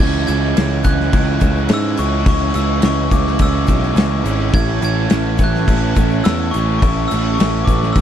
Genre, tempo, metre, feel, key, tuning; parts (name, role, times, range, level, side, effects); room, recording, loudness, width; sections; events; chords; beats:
indie rock; 105 BPM; 4/4; straight; C# minor; A4 = 442 Hz
glockenspiel with hard plastic mallets; melody; 0.0-8.0 s; C#6 to G#6; -23 LUFS; left 1 dB
string machine, violins; sustained chords; 0.0-8.0 s; C#5 to E6; -34 LUFS; left 1 dB
raw garage guitar; riff; 0.0-8.0 s; A2 to E4; -24 LUFS; left 9 dB; overdrive
raw garage guitar; riff; 0.0-8.0 s; E3 to C#4; -21 LUFS; right 12 dB; overdrive, lush chorus
picked electric bass; bass; 0.0-8.0 s; G#1 to G#2; -19 LUFS; equal
loose indie drum kit; drums; 0.3-8.0 s; crash cymbal, kick drum, snare drum; -18 LUFS; left 1 dB
egg shaker; percussion; 0.3-8.0 s; -42 LUFS; left 20 dB
studio ambience; dark, warm production; -13 LUFS; side -10 dB against mid
0.0-8.0 A section
0.0 C#m; 4.5 A
0.56 1.13 1.70 | 2.26 2.83 3.40 3.97 | 4.54 5.11 5.68 6.25 | 6.82 7.39 7.96